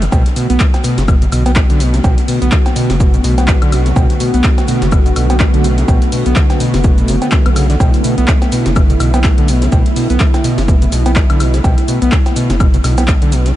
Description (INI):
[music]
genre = acid house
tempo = 125 BPM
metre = 4/4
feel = swing 57% on 16ths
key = B minor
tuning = A4 = 440 Hz
[part]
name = overdriven acid bass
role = riff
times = 0.0-13.5 s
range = B2 to B3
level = -17 LUFS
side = equal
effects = distortion, analog chorus, cassette tape, sidechain pumping, ping-pong delay
[part]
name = saturated sub bass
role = bass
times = 0.0-13.5 s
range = F#1 to B1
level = -15 LUFS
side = equal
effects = sidechain pumping
[part]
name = punchy analog drum machine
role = drums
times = 0.0-13.5 s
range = cowbell, handclaps, hi-hat, shaker, snare drum, woodblock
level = -20 LUFS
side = equal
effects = overdrive
[part]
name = warm analog pad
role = sustained chords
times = 0.1-13.6 s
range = D3 to F#4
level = -19 LUFS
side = equal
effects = chorus, sidechain pumping
[part]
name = electronic kick drum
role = drums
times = 0.1-13.2 s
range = none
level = -12 LUFS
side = equal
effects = overdrive
[part]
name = tight funk drum kit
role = drums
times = 0.1-13.6 s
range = hi-hat, shaker, snare drum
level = -33 LUFS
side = right 2 dB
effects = none
[sound]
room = light reverb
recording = nothing above 10.4 kHz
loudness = -10 LUFS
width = side -14 dB against mid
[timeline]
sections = 0.0-13.6 A section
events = none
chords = 0.0 Bm7